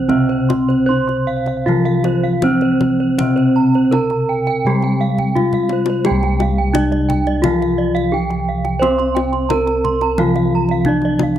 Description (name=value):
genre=Javanese gamelan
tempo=74-87 BPM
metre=4/4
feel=straight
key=C slendro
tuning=A4 = 441 Hz
part: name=gamelan-type bronze metallophone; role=melody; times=0.0-11.4 s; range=C4 to C5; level=-17 LUFS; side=equal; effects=none
part: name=gamelan-type bronze metallophone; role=accompaniment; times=0.0-11.4 s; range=C3 to C4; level=-21 LUFS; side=right 1 dB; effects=none
part: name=gamelan-type bronze metallophone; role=arpeggios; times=0.0-11.4 s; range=C5 to C6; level=-23 LUFS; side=right 7 dB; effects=slapback echo
part: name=gamelan-type bossed gongs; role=bass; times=0.0-11.4 s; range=C2 to C5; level=-21 LUFS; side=left 1 dB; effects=none
part: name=kendang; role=percussion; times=0.1-11.4 s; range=none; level=-24 LUFS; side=left 5 dB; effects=none
room=studio reverb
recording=dry, close 1970s-style studio recording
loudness=-14 LUFS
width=side -11 dB against mid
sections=0.0-6.1 A section; 6.1-11.4 B section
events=drum fill 5.2-6.1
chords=none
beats=| 0.10 0.90 1.68 2.45 | 3.20 3.94 4.66 5.37 | 6.06 6.75 7.43 8.12 | 8.81 9.50 10.18 10.87